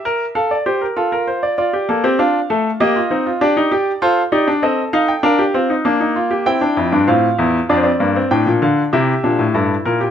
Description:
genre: classical, baroque-style 4-part fugue for grand piano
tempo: 98 BPM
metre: 4/4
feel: straight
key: Bb major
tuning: A4 = 440 Hz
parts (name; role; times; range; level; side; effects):
- clear baby grand piano; solo; 0.0-10.1 s; E2 to G5; -14 LUFS; equal; none
room: light reverb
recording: none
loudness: -14 LUFS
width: side -9 dB against mid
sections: 0.0-10.1 A section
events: none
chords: 0.4 F; 1.6 Bb; 2.8 Cm7/Bb; 4.0 F7; 5.2 Bb; 6.5 F; 7.7 Gm7/F; 8.9 C7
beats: 0.36 0.97 | 1.58 2.19 2.81 3.42 | 4.03 4.63 5.24 5.86 | 6.47 7.08 7.70 8.31 | 8.93 9.55

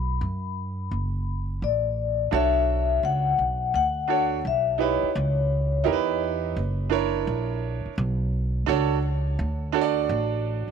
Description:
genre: hip hop, jazz-hop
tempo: 85 BPM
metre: 4/4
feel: swing 64% on 16ths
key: B minor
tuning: A4 = 444 Hz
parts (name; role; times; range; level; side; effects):
- vibraphone with soft mallets; melody; 0.0-6.2 s; C#5 to B5; -26 LUFS; left 9 dB; none
- upright bass; bass; 0.0-10.7 s; F#1 to F#2; -27 LUFS; right 1 dB; none
- clear grand piano; accompaniment; 2.3-10.7 s; D4 to D5; -26 LUFS; right 11 dB; none
room: moderate plate reverb, RT60 2.9 s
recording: 1960s-style stereo with parts hard left and right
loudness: -22 LUFS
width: side -7 dB against mid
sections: 0.0-2.3 A section; 2.3-10.7 B section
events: none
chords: 0.0 Bm7; 2.3 Bm9; 5.1 C#m7b5; 6.6 F#7b13; 8.0 Bm9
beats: 0.21 0.91 1.62 | 2.33 3.03 3.74 4.44 | 5.15 5.86 6.56 7.27 | 7.97 8.68 9.38 10.09

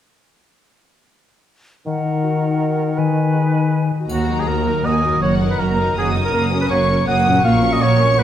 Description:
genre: classical, dramatic, fast romantic movement for symphony orchestra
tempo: 162 BPM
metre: 3/4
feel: straight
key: Eb minor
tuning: A4 = 440 Hz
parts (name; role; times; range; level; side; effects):
- hollow concert flute; second line; 1.9-3.9 s; Gb5 to Ab5; -27 LUFS; left 2 dB; none
- mellow clarinet; second line; 1.9-3.9 s; Eb4; -26 LUFS; equal; none
- mellow oboe; second line; 1.9-8.2 s; Gb4 to Gb5; -20 LUFS; right 1 dB; none
- warm bassoon; accompaniment; 1.9-3.9 s; Eb3; -25 LUFS; right 2 dB; none
- concert harp; arpeggios; 1.9-8.2 s; Gb2 to Eb5; -22 LUFS; left 6 dB; none
- warm symphonic violin section; melody; 4.1-8.2 s; Gb5 to Eb6; -26 LUFS; left 4 dB; none
- warm symphonic violin section; second line; 4.1-8.2 s; Bb3 to Bb4; -26 LUFS; left 3 dB; none
- warm symphonic viola section; accompaniment; 4.1-8.2 s; Eb3 to Db4; -24 LUFS; right 1 dB; none
- dark symphonic cello section; bass; 4.1-8.2 s; Eb2 to Bb2; -22 LUFS; right 2 dB; none
- warm symphonic double bass section; bass; 4.1-8.2 s; Gb1 to Eb2; -22 LUFS; right 3 dB; none
- triangle; percussion; 4.1-4.8 s; none; -44 LUFS; equal; none
room: wet recital hall reverb, RT60 1.6 s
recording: none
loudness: -15 LUFS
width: side -10 dB against mid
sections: 1.9-4.1 A section; 4.1-8.2 B section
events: none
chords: 1.9 Ebm; 3.0 Abm/Eb; 4.1 Ebm; 5.2 Ebm/Gb; 6.3 Gb; 7.4 Gb/Bb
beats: | 1.86 2.24 2.61 | 2.98 3.34 3.72 | 4.10 4.48 4.85 | 5.22 5.59 5.97 | 6.34 6.71 7.07 | 7.44 7.81 8.18

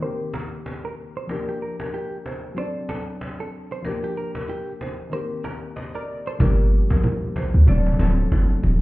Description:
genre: afrobeats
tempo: 94 BPM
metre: 4/4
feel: swing 58% on 16ths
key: G minor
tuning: A4 = 440 Hz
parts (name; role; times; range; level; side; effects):
- marimba with medium hard mallets; melody; 0.0-8.2 s; Bb4 to D5; -33 LUFS; left 2 dB; low-pass filter, tape echo
- warm analog keys; accompaniment; 0.0-8.8 s; Eb3 to Eb5; -30 LUFS; left 2 dB; chorus, low-pass filter
- direct-recorded clean electric guitar; riff; 0.0-6.4 s; G4 to C5; -35 LUFS; right 4 dB; low-pass filter, tape echo
- cajon; drums; 0.0-8.7 s; none; -33 LUFS; equal; none
- hard-hitting 808-style bass; bass; 6.4-8.8 s; D1 to D2; -18 LUFS; equal; none
- congas and bongos; percussion; 6.4-8.8 s; none; -26 LUFS; right 2 dB; none
room: studio ambience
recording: heard muffled through a wall, club reverb, EQ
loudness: -21 LUFS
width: side -19 dB against mid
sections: 0.0-6.4 A section; 6.4-8.8 B section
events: filter sweep 0.0-6.4; kick muted 5.1-6.4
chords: 0.0 Cm7; 1.3 Gm7; 2.6 D7; 3.8 Gm7; 5.1 Cm7; 6.4 Gm7; 7.7 D7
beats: 0.02 0.66 | 1.29 1.93 2.57 3.21 | 3.85 4.49 5.12 5.76 | 6.40 7.04 7.68 8.32

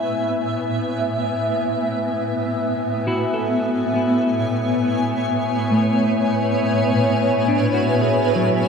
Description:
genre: ambient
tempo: 68 BPM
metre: 3/4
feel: straight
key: A major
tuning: A4 = 441 Hz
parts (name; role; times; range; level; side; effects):
- granular cloud pad; sustained chords; 0.0-8.7 s; A2 to G#5; -20 LUFS; equal; built-in reverb
- glass harmonica; texture; 0.0-8.7 s; E4 to E5; -26 LUFS; left 4 dB; stereo widening
- semi-hollow electric guitar; arpeggios; 3.1-8.7 s; F#3 to A4; -23 LUFS; equal; vibrato effect, ping-pong delay
room: wet huge ambient reverb, RT60 8.4 s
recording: in a vast, echoing space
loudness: -18 LUFS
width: side -6 dB against mid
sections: 0.0-8.7 A section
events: none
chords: 0.0 E/A; 2.2 Amaj9; 7.5 Amaj7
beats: 0.42 1.30 | 2.18 3.06 3.95 | 4.83 5.71 6.59 | 7.48 8.36

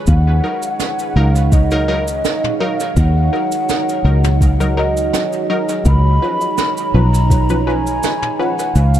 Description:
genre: ambient dub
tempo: 83 BPM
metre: 4/4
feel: swing 53% on 16ths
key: Eb minor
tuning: A4 = 440 Hz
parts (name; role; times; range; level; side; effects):
- deep dark ambient pad; sustained chords; 0.0-9.0 s; Eb4 to Ab5; -22 LUFS; right 4 dB; chorus, built-in reverb
- mellow hollow wooden flute; melody; 0.1-9.0 s; Eb5 to Cb6; -20 LUFS; equal; dub echo
- fingered electric bass; bass; 0.1-9.0 s; Cb2 to Eb2; -13 LUFS; equal; none
- electronic kick drum; drums; 0.1-7.5 s; none; -15 LUFS; equal; overdrive
- jazz brush drum kit; drums; 0.1-9.0 s; cabasa, snare drum, toms; -25 LUFS; right 4 dB; dub echo
- filtered dub chord stab; stabs; 0.4-8.5 s; F3 to Cb5; -24 LUFS; left 2 dB; chorus, cassette tape, dub echo
room: little or no reverb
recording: dark, warm production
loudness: -13 LUFS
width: side -11 dB against mid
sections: 0.0-9.0 A section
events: kick drops out 8.8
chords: 0.1 Ebm; 5.9 Db7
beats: | 0.08 0.80 1.52 2.25 | 2.97 3.69 4.42 5.14 | 5.86 6.58 7.31 8.03 | 8.75

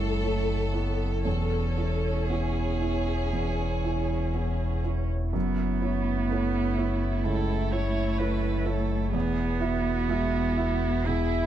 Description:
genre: neoclassical piano and strings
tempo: 57-64 BPM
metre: 4/4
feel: rubato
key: F# minor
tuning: A4 = 440 Hz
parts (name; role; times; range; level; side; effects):
- rich chamber violin section; melody; 0.0-11.5 s; E4 to A4; -35 LUFS; left 2 dB; none
- rich cello; second line; 0.0-11.5 s; G#3 to E4; -32 LUFS; right 4 dB; none
- felt-muted upright piano; accompaniment; 0.0-11.5 s; C#2 to E5; -31 LUFS; right 4 dB; none
- warbly tape-like pad; sustained chords; 0.0-11.5 s; F#3 to E5; -37 LUFS; right 1 dB; none
- sub bass with octave; bass; 0.0-11.5 s; E1 to F#1; -29 LUFS; left 1 dB; none
- clear viola; accompaniment; 7.3-11.5 s; F#4 to C#5; -36 LUFS; right 1 dB; none
room: light reverb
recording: dark, warm production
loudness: -25 LUFS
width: side -11 dB against mid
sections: 0.0-5.3 A section; 5.3-11.5 A section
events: none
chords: 0.0 F#m7; 1.3 C#m7/E; 5.3 F#m7; 9.1 E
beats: 0.23 | 1.25 2.29 3.32 4.34 | 5.35 6.31 7.26 8.20 | 9.14 10.10 11.08

